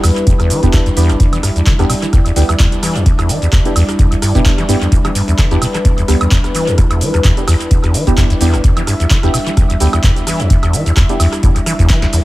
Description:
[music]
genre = acid house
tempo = 129 BPM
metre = 4/4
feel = swing 55% on 16ths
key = E minor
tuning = A4 = 440 Hz
[part]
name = warm analog pad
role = sustained chords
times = 0.0-12.2 s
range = G3 to E5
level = -21 LUFS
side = equal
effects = chorus, sidechain pumping
[part]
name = acid bass, saw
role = riff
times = 0.0-12.2 s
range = E1 to E3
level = -14 LUFS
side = equal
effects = tube saturation, lush chorus, cassette tape, analog delay
[part]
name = booming analog drum machine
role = drums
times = 0.0-12.2 s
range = handclaps, hi-hat, rim click, shaker, snare drum, woodblock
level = -20 LUFS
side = right 1 dB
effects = analog delay
[part]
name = electronic kick drum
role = drums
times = 0.3-12.0 s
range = none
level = -13 LUFS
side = equal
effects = none
[part]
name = deep mellow chord stab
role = stabs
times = 0.6-11.1 s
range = B3 to G4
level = -21 LUFS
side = right 2 dB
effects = chorus, analog delay
[sound]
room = light reverb, digital ambience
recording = echo-heavy mix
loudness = -10 LUFS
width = side -17 dB against mid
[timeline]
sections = 0.0-12.2 A section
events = drum fill 11.9-12.2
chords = 0.0 Em7

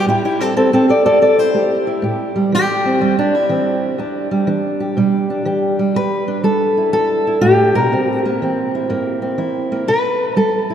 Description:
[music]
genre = acoustic country blues, solo or duo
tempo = 122 BPM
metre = 4/4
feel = swing 66% on 8ths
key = E minor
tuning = A4 = 440 Hz
[part]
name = fingerpicked steel-string acoustic guitar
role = solo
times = 0.0-10.7 s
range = E2 to D5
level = -14 LUFS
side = equal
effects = none
[sound]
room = wet cathedral reverb, RT60 5.3 s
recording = in a vast, echoing space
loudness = -14 LUFS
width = side -9 dB against mid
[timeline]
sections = 0.0-10.7 A section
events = steel-string acoustic guitar solo 0.0-10.7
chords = 0.1 Am7; 4.0 Em7; 7.9 C7

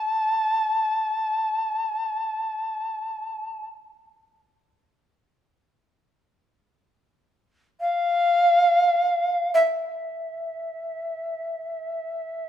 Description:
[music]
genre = japanese traditional, Japanese chamber music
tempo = free time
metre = none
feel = none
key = unclear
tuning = A4 = 441 Hz
[part]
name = reedy shakuhachi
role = solo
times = 0.0-12.5 s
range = E5 to A5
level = -22 LUFS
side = equal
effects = none
[sound]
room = moderate recital hall reverb, RT60 1.7 s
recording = minimal, uncompressed stereo recording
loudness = -22 LUFS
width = side -10 dB against mid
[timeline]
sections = 0.0-12.5 A section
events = none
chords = none

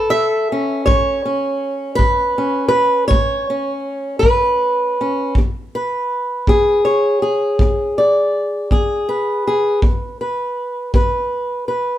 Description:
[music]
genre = acoustic country blues, solo or duo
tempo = 54 BPM (dotted quarters)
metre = 12/8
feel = straight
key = E mixolydian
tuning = A4 = 438 Hz
[part]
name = fingerpicked acoustic archtop guitar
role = melody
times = 0.0-12.0 s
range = E2 to E5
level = -16 LUFS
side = equal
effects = none
[part]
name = kick drum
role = drums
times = 0.9-11.1 s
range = none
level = -16 LUFS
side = equal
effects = none
[sound]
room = moderate small room reverb, RT60 0.6 s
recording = none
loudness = -15 LUFS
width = side -12 dB against mid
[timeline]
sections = 0.0-12.0 A section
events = none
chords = 0.0 A; 5.4 E

